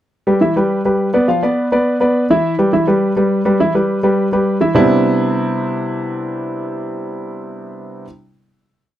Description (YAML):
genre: jazz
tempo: 208 BPM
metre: 4/4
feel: straight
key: C major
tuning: A4 = 440 Hz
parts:
  - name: warm concert grand piano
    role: solo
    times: 0.3-8.1 s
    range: C3 to F5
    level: -14 LUFS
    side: equal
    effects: none
room: light reverb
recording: dry, close 1970s-style studio recording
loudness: -13 LUFS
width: side -12 dB against mid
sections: 0.1-4.8 A section; 4.8-7.1 final chord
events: none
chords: 0.1 Em; 1.3 Dm69; 2.4 Em; 4.8 Cmaj9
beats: | 0.12 0.41 0.70 0.99 | 1.28 1.57 1.86 2.15 | 2.44 2.73 3.02 3.31 | 3.60 3.89 4.18 4.46 | 4.75 5.04 5.33 5.62 | 5.91 6.20 6.48 6.77